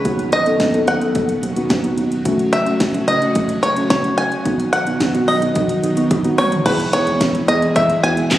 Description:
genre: synth-pop.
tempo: 109 BPM.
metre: 4/4.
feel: straight.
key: E major.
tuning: A4 = 440 Hz.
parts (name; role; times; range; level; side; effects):
bluegrass banjo; melody; 0.0-8.4 s; B4 to G#5; -18 LUFS; equal; tape echo.
string machine, full ensemble; sustained chords; 0.0-8.4 s; A2 to G#4; -24 LUFS; right 1 dB; ensemble chorus.
muted felt-like synth keys; accompaniment; 0.1-8.3 s; A3 to A4; -20 LUFS; equal; chorus.
rubbery square bass; bass; 0.1-8.4 s; F#1 to E2; -28 LUFS; equal; none.
house drum kit; drums; 0.1-8.4 s; crash cymbal, handclaps, hi-hat, kick drum, snare drum, toms; -21 LUFS; equal; none.
room: moderate lush hall reverb, RT60 2.0 s.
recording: recorded on a phone in the room, club reverb, compression.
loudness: -15 LUFS.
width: side -14 dB against mid.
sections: 0.0-6.7 A section; 6.7-8.4 B section.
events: drum fill 6.1-6.7.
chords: 0.1 B; 2.3 F#m; 4.5 B; 6.7 E.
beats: | 0.05 0.60 1.15 1.70 | 2.25 2.80 3.35 3.90 | 4.46 5.01 5.56 6.11 | 6.66 7.21 7.76 8.31.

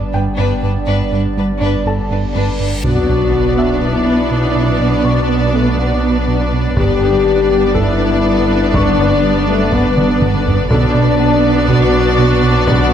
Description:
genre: cinematic, hybrid orchestral and electronic film score.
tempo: 122 BPM.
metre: 4/4.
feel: straight.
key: B minor.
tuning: A4 = 440 Hz.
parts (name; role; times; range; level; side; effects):
hollow soft pad; sustained chords; 0.0-12.9 s; D3 to D5; -21 LUFS; right 1 dB; chorus.
smooth synth bass; riff; 0.0-12.8 s; G2 to B3; -19 LUFS; right 3 dB; none.
warm sub bass; bass; 0.0-12.9 s; G1 to B1; -22 LUFS; equal; none.
clear baby grand piano; texture; 0.0-12.9 s; A4 to C#6; -28 LUFS; left 2 dB; tape echo.
rich chamber violin section; second line; 0.1-12.9 s; D4 to D5; -23 LUFS; left 6 dB; none.
warm studio cello section; bass; 0.1-12.9 s; G2 to B2; -23 LUFS; right 3 dB; none.
reverse cymbal and sub drop; sound effects; 2.2-4.8 s; none; -25 LUFS; equal; none.
clear symphonic viola section; accompaniment; 2.8-12.9 s; B3 to D4; -20 LUFS; right 2 dB; none.
mellow French horn section; sustained chords; 2.8-12.9 s; A3 to G4; -17 LUFS; left 5 dB; none.
rich studio double bass section; bass; 2.8-12.9 s; G1 to B1; -23 LUFS; right 6 dB; none.
solo taiko drums; drums; 2.8-3.8, 6.8-12.9 s; none; -20 LUFS; left 1 dB; none.
room: moderate concert hall reverb, RT60 2.0 s.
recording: none.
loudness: -11 LUFS.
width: side -9 dB against mid.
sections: 0.0-2.8 A section; 2.8-12.9 B section.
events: build-up 0.0-2.8; reverse cymbal 2.2-2.8; impact 2.8-4.8; drum fill 10.0-10.7.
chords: 0.0 G; 2.8 Bm; 6.8 G; 10.7 Bm.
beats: 0.38 | 0.87 1.37 1.86 2.35 | 2.84 3.33 3.83 4.32 | 4.81 5.30 5.79 6.28 | 6.78 7.27 7.76 8.25 | 8.74 9.23 9.73 10.22 | 10.71 11.20 11.69 12.19 | 12.68.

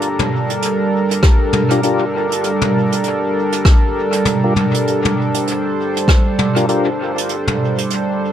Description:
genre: ambient dub.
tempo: 99 BPM.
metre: 4/4.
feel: swing 60% on 16ths.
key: G minor.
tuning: A4 = 439 Hz.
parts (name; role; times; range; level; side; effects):
warm analog pad; sustained chords; 0.0-8.3 s; G3 to C5; -17 LUFS; right 1 dB; chorus.
jazz brush drum kit; drums; 0.0-8.0 s; hi-hat, rim click, toms; -20 LUFS; right 1 dB; dub echo.
electronic kick drum; drums; 1.2-6.2 s; none; -11 LUFS; equal; none.
mellow tonewheel organ; stabs; 1.7-6.9 s; D4 to Bb4; -22 LUFS; left 4 dB; overdrive, chorus vibrato, slow rotary speaker, dub echo.
room: moderate spring reverb, RT60 2.2 s.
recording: echo-heavy mix.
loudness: -14 LUFS.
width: side -10 dB against mid.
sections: 0.0-8.3 A section.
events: none.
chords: 0.0 Gm7.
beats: | 0.02 0.62 1.23 1.83 | 2.44 3.05 3.65 4.26 | 4.87 5.47 6.08 6.68 | 7.29 7.90.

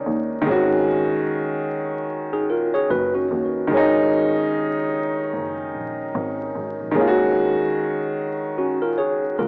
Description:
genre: lo-fi hip hop.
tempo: 74 BPM.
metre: 4/4.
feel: swing 59% on 16ths.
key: unclear.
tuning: A4 = 440 Hz.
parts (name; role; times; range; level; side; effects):
warm upright piano; accompaniment; 0.0-9.5 s; Eb3 to Gb4; -23 LUFS; equal; cassette tape, low-pass filter.
rich double bass; bass; 0.0-9.5 s; Gb1 to Eb2; -31 LUFS; equal; none.
tine electric piano; second line; 2.3-9.5 s; Db4 to Db5; -24 LUFS; equal; low-pass filter.
room: light reverb.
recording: home recording on cassette, vinyl crackle, small speaker sound.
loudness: -22 LUFS.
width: mono.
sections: 0.0-9.5 A section.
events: none.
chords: 0.5 Ab5; 7.0 Ebm7.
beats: | 0.47 1.28 2.09 2.90 | 3.71 4.52 5.33 6.14 | 6.95 7.76 8.57 9.38.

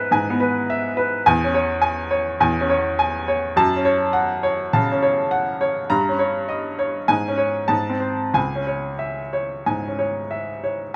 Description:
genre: classical, romantic character piece for solo piano.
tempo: 90-108 BPM.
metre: 4/4.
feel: rubato.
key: C# minor.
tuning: A4 = 440 Hz.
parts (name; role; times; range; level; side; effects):
bright upright piano; solo; 0.0-11.0 s; C#2 to A#5; -21 LUFS; equal; none.
room: moderate large studio reverb, RT60 1.2 s.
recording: none.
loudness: -21 LUFS.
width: mono.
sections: 0.0-11.0 A section.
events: none.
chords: 0.0 E/G#; 1.3 C#m/E; 3.6 F#m; 5.9 D#7/G; 7.1 C#5/G#; 7.7 G#; 8.4 C#m.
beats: 0.13 0.69 | 1.25 1.81 2.40 2.98 | 3.56 4.15 4.74 5.33 | 5.91 6.51 7.10 7.72 | 8.36 9.02 9.68 10.32.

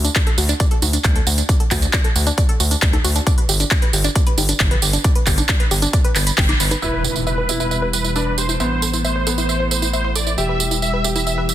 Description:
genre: uplifting trance.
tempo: 135 BPM.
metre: 4/4.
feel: straight.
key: E minor.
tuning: A4 = 440 Hz.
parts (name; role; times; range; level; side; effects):
wide unison pluck; arpeggios; 0.0-11.5 s; D4 to D6; -26 LUFS; left 2 dB; sidechain pumping, tape echo.
gritty driven synth bass; bass; 0.0-11.5 s; E1 to D2; -21 LUFS; equal; sidechain pumping.
big-room dance drum kit; drums; 0.0-11.5 s; congas, handclaps, hi-hat, tambourine; -20 LUFS; right 3 dB; none.
electronic kick drum; drums; 0.2-6.5 s; none; -16 LUFS; equal; none.
supersaw chords; melody; 6.8-11.5 s; B4 to E5; -23 LUFS; right 1 dB; wide subtle chorus, cassette tape, sidechain pumping, low-pass filter, digital delay.
clear concert grand piano; second line; 6.8-11.5 s; B3 to G4; -26 LUFS; right 1 dB; dub echo.
lush unison pad; sustained chords; 6.8-11.5 s; E3 to B3; -28 LUFS; left 1 dB; chorus, sidechain pumping.
impact; sound effects; 6.8-8.6 s; none; -29 LUFS; left 1 dB; none.
room: light reverb.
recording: dense, heavily limited modern master.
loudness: -15 LUFS.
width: side -12 dB against mid.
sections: 0.0-6.8 A section; 6.8-11.5 B section.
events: band accent 6.4; impact 6.8-8.6; filter sweep on supersaw synth 6.8-11.5; filter sweep on analog synth pad 6.8-11.5.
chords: 0.0 N.C.; 3.3 G; 6.8 Em; 8.6 Am; 10.4 Em.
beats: 0.16 0.60 1.04 | 1.49 1.93 2.38 2.82 | 3.27 3.71 4.16 4.60 | 5.04 5.49 5.93 6.38 | 6.82 7.27 7.71 8.16 | 8.60 9.04 9.49 9.93 | 10.38 10.82 11.27.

